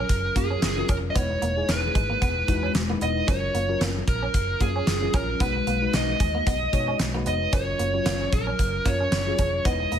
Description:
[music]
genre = 1980s-style pop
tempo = 113 BPM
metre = 4/4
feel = swing 55% on 16ths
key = F# major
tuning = A4 = 441 Hz
[part]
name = dark smooth lead guitar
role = melody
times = 0.0-10.0 s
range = G#4 to D#5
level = -26 LUFS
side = right 1 dB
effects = overdrive
[part]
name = mellow FM electric piano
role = accompaniment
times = 0.0-10.0 s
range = F#3 to C#5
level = -30 LUFS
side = left 2 dB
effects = chorus, phaser
[part]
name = clean electric guitar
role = riff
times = 0.0-10.0 s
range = G#3 to C#4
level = -34 LUFS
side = right 6 dB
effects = analog chorus
[part]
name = vintage muted picked electric bass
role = bass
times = 0.1-10.0 s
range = E1 to B2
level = -29 LUFS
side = equal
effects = none
[part]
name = gated 80s drum kit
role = drums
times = 0.1-10.0 s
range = hi-hat, kick drum, snare drum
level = -26 LUFS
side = equal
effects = gated reverb
[sound]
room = light reverb, small room ambience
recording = none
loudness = -22 LUFS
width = side -9 dB against mid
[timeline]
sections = 0.0-10.0 A section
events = none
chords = 0.0 F#maj7; 1.2 Emaj7; 3.3 F#maj7; 5.4 B6; 7.5 F#maj7

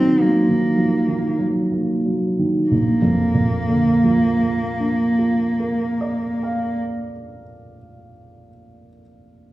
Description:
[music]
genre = classical, romantic duo for cello and grand piano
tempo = 44-53 BPM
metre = 4/4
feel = rubato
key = Bb major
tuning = A4 = 440 Hz
[part]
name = rich cello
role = melody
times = 0.0-6.8 s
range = Bb3 to C4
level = -20 LUFS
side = equal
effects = none
[part]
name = warm baby grand piano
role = accompaniment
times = 0.0-9.5 s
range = Bb1 to F5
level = -19 LUFS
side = right 1 dB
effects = none
[sound]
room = wet recital hall reverb, RT60 1.5 s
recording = heard from further back in the room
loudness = -17 LUFS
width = side -16 dB against mid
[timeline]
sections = 0.0-2.7 A section; 2.7-7.5 B section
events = slowing down 0.0-2.7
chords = 0.0 Ebm/Bb; 2.7 Bb

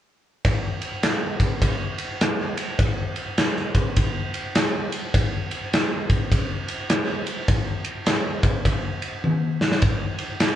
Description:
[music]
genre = rock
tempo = 102 BPM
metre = 4/4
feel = swing 62% on 8ths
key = none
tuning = none
[part]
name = big rock drum kit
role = drums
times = 0.4-10.6 s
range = kick drum, ride cymbal, snare drum, toms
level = -21 LUFS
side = equal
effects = none
[sound]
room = moderate large studio reverb, RT60 1.0 s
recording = band playing live in one room, cassette tape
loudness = -21 LUFS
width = side -11 dB against mid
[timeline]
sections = 0.5-10.6 A section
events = drum fill 9.2-9.8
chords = none

